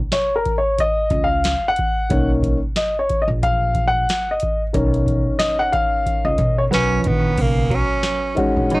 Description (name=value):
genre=hip hop, jazz-hop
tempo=91 BPM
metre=4/4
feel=swing 60% on 16ths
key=B lydian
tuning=A4 = 439 Hz
part: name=dark baby grand piano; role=accompaniment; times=0.1-8.8 s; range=D#3 to F#5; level=-19 LUFS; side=left 1 dB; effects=cassette tape
part: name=booming analog drum machine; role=drums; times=0.1-8.8 s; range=crash cymbal, hi-hat, kick drum, snare drum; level=-23 LUFS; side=equal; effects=cassette tape
part: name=upright bass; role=bass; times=1.1-8.8 s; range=A#1 to B2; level=-22 LUFS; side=equal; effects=tube saturation
part: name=breathy tenor saxophone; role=melody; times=6.7-8.8 s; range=A#3 to D#4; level=-22 LUFS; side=right 2 dB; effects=tape echo
part: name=semi-hollow electric guitar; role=second line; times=6.7-8.8 s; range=C#3 to F#3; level=-23 LUFS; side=right 4 dB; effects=phaser, cassette tape
room=light reverb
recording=home recording on cassette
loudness=-16 LUFS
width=side -21 dB against mid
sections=0.0-7.4 A section; 7.4-8.8 B section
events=grand piano solo 0.0-7.4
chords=0.0 Bmaj9